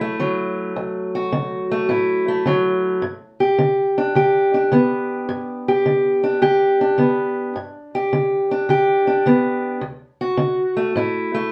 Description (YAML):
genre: blues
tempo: 106 BPM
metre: 4/4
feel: swing 68% on 8ths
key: unclear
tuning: A4 = 441 Hz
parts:
  - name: fingerpicked steel-string acoustic guitar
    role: solo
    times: 0.0-11.5 s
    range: D2 to G4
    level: -19 LUFS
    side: equal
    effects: none
room: wet studio reverb, RT60 0.6 s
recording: heard from further back in the room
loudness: -19 LUFS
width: mono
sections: 0.0-11.5 A section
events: none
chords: 0.0 D; 3.0 G; 9.8 D